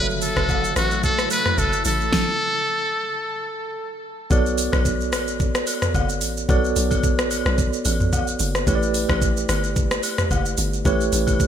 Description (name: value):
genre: amapiano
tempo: 110 BPM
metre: 4/4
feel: swing 55% on 16ths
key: B minor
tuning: A4 = 441 Hz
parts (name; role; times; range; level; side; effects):
- trumpet with metal mute; melody; 0.0-4.0 s; F#4 to B4; -22 LUFS; equal; digital delay
- tine electric piano; accompaniment; 0.0-11.5 s; F#3 to E5; -25 LUFS; right 3 dB; fast stereo tremolo
- granular cloud pad; sustained chords; 0.0-2.1 s; C#3 to E4; -32 LUFS; equal; built-in reverb, sidechain pumping
- hollow log drum bass; bass; 0.0-11.5 s; F#1 to B1; -25 LUFS; equal; none
- smooth R&B drum kit; drums; 0.1-11.5 s; hi-hat, kick drum, rim click, shaker, snare drum, toms; -22 LUFS; equal; gated reverb
- agogo bells and woodblock; percussion; 0.4-11.4 s; none; -31 LUFS; left 6 dB; none
room: light reverb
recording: bright 1980s-style digital production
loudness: -19 LUFS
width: side -9 dB against mid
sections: 0.0-4.3 A section; 4.3-11.5 B section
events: stop 2.1-4.3; drop 4.3-11.5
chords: 0.0 F#m7; 4.3 Bm9; 8.7 A7sus4